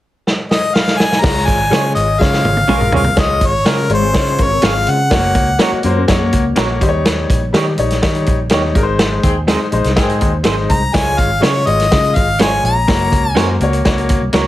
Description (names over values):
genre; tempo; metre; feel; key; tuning
uptempo 1960s-style soul; 124 BPM; 4/4; straight; Db major; A4 = 440 Hz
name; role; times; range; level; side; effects
vintage drum kit; drums; 0.3-14.5 s; crash cymbal, hi-hat, kick drum, snare drum, toms; -16 LUFS; equal; none
clear harmonica; melody; 0.5-5.9, 10.7-13.6 s; Bb4 to Bb5; -17 LUFS; left 2 dB; analog delay
clear grand piano; accompaniment; 1.2-14.5 s; G3 to F5; -19 LUFS; left 3 dB; none
vintage muted fingered electric bass; bass; 1.2-14.5 s; Gb1 to Eb3; -18 LUFS; equal; none
electric guitar through a small old amp; stabs; 1.7-14.4 s; Bb3 to Db5; -20 LUFS; right 6 dB; none
mellow electric guitar; riff; 3.9-6.8 s; Ab3 to Eb5; -22 LUFS; left 5 dB; wide subtle chorus
warm horn section; second line; 9.2-10.3 s; Eb3 to Ab4; -21 LUFS; equal; none
room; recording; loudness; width
light reverb; heavily compressed radio sound, multiband compression; -12 LUFS; side -14 dB against mid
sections
0.0-1.2 A section; 1.2-3.2 B section; 3.2-14.5 C section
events
drum fill 0.3-1.2, 2.2-3.2; band accent 9.0-10.9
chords
0.0 N.C.; 1.2 Db; 5.1 Gb; 6.8 Eb7; 8.8 Ab; 10.9 Db; 12.9 Gb